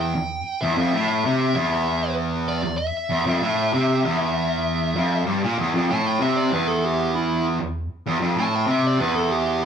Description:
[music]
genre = metal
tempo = 97 BPM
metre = 4/4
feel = straight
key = E minor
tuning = A4 = 439 Hz
[part]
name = fuzz lead guitar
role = melody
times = 0.0-9.6 s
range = E4 to A5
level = -26 LUFS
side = left 1 dB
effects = distortion
[part]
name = fuzz guitar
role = riff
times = 0.0-9.7 s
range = E2 to C3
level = -20 LUFS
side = equal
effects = distortion
[sound]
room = moderate large studio reverb, RT60 0.9 s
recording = band playing live in one room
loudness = -20 LUFS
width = side -7 dB against mid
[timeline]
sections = 0.0-5.6 A section; 5.6-9.7 B section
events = lead electric guitar solo 5.6-9.7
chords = 0.0 N.C.; 5.6 Em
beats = 0.00 | 0.62 1.25 1.87 2.49 | 3.11 3.73 4.35 4.97 | 5.59 6.21 6.83 7.46 | 8.08 8.70 9.32

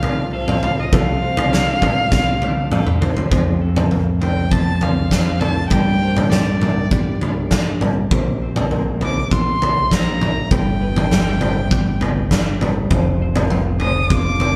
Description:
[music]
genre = post-rock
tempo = 100 BPM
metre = 4/4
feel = straight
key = unclear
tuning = A4 = 439 Hz
[part]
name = dark violin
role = melody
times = 0.0-14.6 s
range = D5 to Eb6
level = -25 LUFS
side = equal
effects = none
[part]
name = evolving wavetable pad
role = sustained chords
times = 0.0-3.3, 14.0-14.6 s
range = C3 to A5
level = -39 LUFS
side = equal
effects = none
[part]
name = felt-muted upright piano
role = arpeggios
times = 0.0-14.6 s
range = A4 to F5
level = -34 LUFS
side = equal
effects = none
[part]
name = twelve-string electric guitar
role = arpeggios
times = 0.0-14.6 s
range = C3 to A4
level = -29 LUFS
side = equal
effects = none
[part]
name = growling fingered electric bass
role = bass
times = 0.0-14.6 s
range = F1 to G2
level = -25 LUFS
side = equal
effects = overdrive
[part]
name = huge arena drum kit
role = drums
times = 0.0-14.5 s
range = kick drum, snare drum, toms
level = -20 LUFS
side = equal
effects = none
[sound]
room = moderate stone room reverb, RT60 1.4 s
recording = band playing live in one room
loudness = -18 LUFS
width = mono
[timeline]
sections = 0.0-3.3 A section; 3.3-14.6 B section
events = drum fill 2.1-3.3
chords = 0.0 F/C; 0.9 Dm/C; 3.3 F; 5.7 Gm; 8.1 Bbsus2; 10.5 Gadd9; 12.9 F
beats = 0.34 | 0.93 1.53 2.13 2.73 | 3.33 3.92 4.52 5.12 | 5.72 6.32 6.92 7.52 | 8.12 8.71 9.31 9.91 | 10.51 11.11 11.71 12.31 | 12.91 13.51 14.11

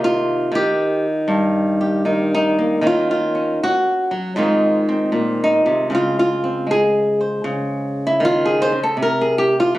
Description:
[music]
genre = solo jazz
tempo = 78 BPM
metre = 4/4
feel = swing 68% on 8ths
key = unclear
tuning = A4 = 440 Hz
[part]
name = flamenco guitar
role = solo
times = 0.0-9.8 s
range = G2 to C5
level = -16 LUFS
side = equal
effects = none
[sound]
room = light reverb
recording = recorded on a phone in the room, club reverb, compression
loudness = -16 LUFS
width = side -16 dB against mid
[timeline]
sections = 0.0-9.8 A section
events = nylon-string guitar solo 0.0-9.8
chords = 0.0 Cm7; 2.8 Ebm7; 4.4 Ab69; 5.9 Db5; 9.0 C5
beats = 0.51 1.28 2.05 | 2.82 3.59 4.36 5.12 | 5.89 6.66 7.43 8.20 | 8.97 9.73

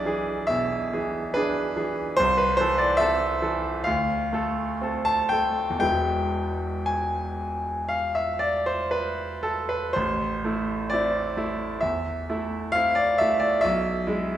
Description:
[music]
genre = classical, romantic nocturne for solo piano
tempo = 56-73 BPM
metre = 4/4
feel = rubato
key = A minor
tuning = A4 = 439 Hz
[part]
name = bright grand piano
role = solo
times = 0.0-14.4 s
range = E1 to A5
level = -22 LUFS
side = equal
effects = none
[sound]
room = wet recital hall reverb, RT60 1.6 s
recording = heard from further back in the room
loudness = -22 LUFS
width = side -11 dB against mid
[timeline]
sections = 0.0-14.4 A section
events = none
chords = 0.0 E7/B; 2.2 Am/C; 3.9 Dm7; 5.8 E; 10.0 Am; 13.6 E/B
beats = 0.50 1.36 | 2.18 3.01 3.87 4.84 | 5.84 6.90 7.93 8.95 | 9.96 10.92 11.84 12.75 | 13.63

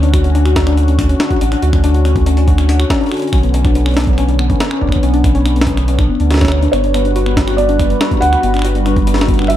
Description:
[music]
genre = IDM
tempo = 141 BPM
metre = 4/4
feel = straight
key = D major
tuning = A4 = 440 Hz
[part]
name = phased analog pad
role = sustained chords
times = 0.0-9.6 s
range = D3 to B4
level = -21 LUFS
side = equal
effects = phaser, chorus
[part]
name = warbly dusty pluck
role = arpeggios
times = 0.0-9.6 s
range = B3 to C#5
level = -18 LUFS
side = left 4 dB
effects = lush chorus, digital delay
[part]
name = warm sub bass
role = bass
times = 0.0-9.6 s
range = F#1 to D2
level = -14 LUFS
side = equal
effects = tube saturation
[part]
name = jungle sampler-style drum kit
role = drums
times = 0.0-9.6 s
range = finger snaps, hi-hat, snare drum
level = -21 LUFS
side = equal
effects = overdrive, ping-pong delay
[part]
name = electronic kick drum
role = drums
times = 0.1-9.4 s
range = none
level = -16 LUFS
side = equal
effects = overdrive
[part]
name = felt-muted upright piano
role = melody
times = 6.7-9.6 s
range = C#5 to F#5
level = -17 LUFS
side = right 3 dB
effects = tape echo
[sound]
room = light reverb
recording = none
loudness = -11 LUFS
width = side -12 dB against mid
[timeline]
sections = 0.0-9.6 A section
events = none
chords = 0.0 Dmaj7; 3.3 Bmadd9; 6.7 Gmaj7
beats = 0.35 0.77 1.20 | 1.62 2.05 2.48 2.90 | 3.33 3.75 4.18 4.60 | 5.03 5.46 5.88 6.31 | 6.73 7.16 7.58 8.01 | 8.43 8.86 9.28

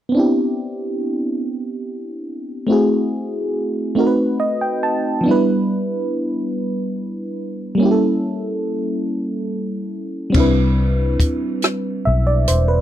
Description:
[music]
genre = slow six-eight R&B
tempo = 47 BPM (dotted quarters)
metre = 6/8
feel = straight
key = C major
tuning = A4 = 438 Hz
[part]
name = mellow FM electric piano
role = accompaniment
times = 0.1-12.8 s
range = F3 to A5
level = -18 LUFS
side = equal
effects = chorus
[part]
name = compact cocktail drum kit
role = drums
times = 10.3-12.7 s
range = crash cymbal, hi-hat, kick drum, rim click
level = -20 LUFS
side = equal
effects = none
[part]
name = vintage muted fingered electric bass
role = bass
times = 10.4-12.8 s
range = E1 to C2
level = -16 LUFS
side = left 1 dB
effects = none
[sound]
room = little or no reverb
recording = dry, close 1970s-style studio recording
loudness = -17 LUFS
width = side -11 dB against mid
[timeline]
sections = 0.1-10.3 A section; 10.3-12.8 B section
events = FM electric piano fill 4.0-5.2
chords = 0.1 Cmaj9; 2.7 F#m7b5; 4.0 B7b9; 5.2 Em7; 7.8 A7b9; 10.3 Cmaj9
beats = | 0.14 1.41 | 2.69 3.96 | 5.24 6.52 | 7.79 9.07 | 10.35 11.62

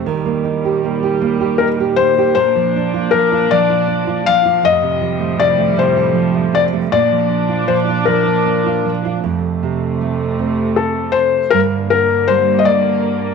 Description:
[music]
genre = children's music, lullaby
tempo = 52 BPM (dotted quarters)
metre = 6/8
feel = straight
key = Bb major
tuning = A4 = 440 Hz
[part]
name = nylon-string guitar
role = accompaniment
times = 0.0-13.3 s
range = F2 to A4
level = -18 LUFS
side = right 10 dB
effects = none
[part]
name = warm studio string section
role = sustained chords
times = 0.0-13.3 s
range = Eb2 to D4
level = -22 LUFS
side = right 1 dB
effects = stereo widening
[part]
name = felt-muted upright piano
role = melody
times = 1.6-13.3 s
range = A4 to F5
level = -14 LUFS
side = left 9 dB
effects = none
[sound]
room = moderate echo chamber reverb, RT60 1.6 s, studio reverb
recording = 1960s-style stereo with parts hard left and right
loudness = -13 LUFS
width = side -5 dB against mid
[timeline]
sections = 0.0-9.2 A section; 9.2-13.3 B section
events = none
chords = 0.1 Eb; 2.4 Bb; 4.6 Fadd9; 6.9 Bb; 9.2 F; 11.5 Gm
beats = | 0.06 1.22 | 2.37 3.51 | 4.64 5.78 | 6.92 8.06 | 9.22 10.38 | 11.52 12.66

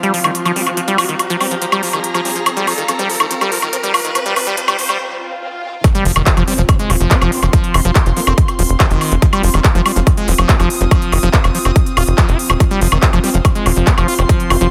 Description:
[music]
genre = psychedelic trance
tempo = 142 BPM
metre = 4/4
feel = straight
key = unclear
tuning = A4 = 440 Hz
[part]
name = overtone-sweeping drone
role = sustained chords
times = 0.0-5.0 s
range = F3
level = -32 LUFS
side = equal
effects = none
[part]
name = liquid acid bass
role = riff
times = 0.0-14.7 s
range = Eb3 to F4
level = -22 LUFS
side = equal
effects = chorus, sidechain pumping, digital delay
[part]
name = big-room dance drum kit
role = drums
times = 0.0-14.7 s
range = handclaps, hi-hat, woodblock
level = -20 LUFS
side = equal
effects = overdrive
[part]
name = riser, swell and impact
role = sound effects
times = 0.0-7.5 s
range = none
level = -26 LUFS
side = equal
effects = none
[part]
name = airy breathy pad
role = texture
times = 0.0-14.7 s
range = C4 to Eb6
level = -26 LUFS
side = equal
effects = chorus, sidechain pumping
[part]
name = formant-sweep wobble bass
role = second line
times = 0.6-8.3, 13.2-14.7 s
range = Bb3 to F4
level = -31 LUFS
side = equal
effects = subtle chorus, sidechain pumping, high-pass filter, digital delay
[part]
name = electronic kick drum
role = drums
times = 5.8-14.4 s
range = none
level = -15 LUFS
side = equal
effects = overdrive
[part]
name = tight sequencer bass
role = bass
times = 6.1-14.7 s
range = Eb1 to F1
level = -17 LUFS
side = equal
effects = none
[sound]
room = light reverb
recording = high-pass filter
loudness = -14 LUFS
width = mono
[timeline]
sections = 0.0-5.8 A section; 5.8-14.7 B section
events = build-up 0.0-5.8; riser 0.0-5.0; break 5.0-5.8; swell 5.0-5.8; drop 5.8-14.7; impact 5.8-7.5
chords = 0.0 F5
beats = 0.35 | 0.77 1.19 1.62 2.04 | 2.46 2.88 3.31 3.73 | 4.15 4.58 5.00 5.42 | 5.84 6.26 6.69 7.11 | 7.53 7.96 8.38 8.80 | 9.22 9.64 10.07 10.49 | 10.91 11.34 11.76 12.18 | 12.60 13.03 13.45 13.87 | 14.29

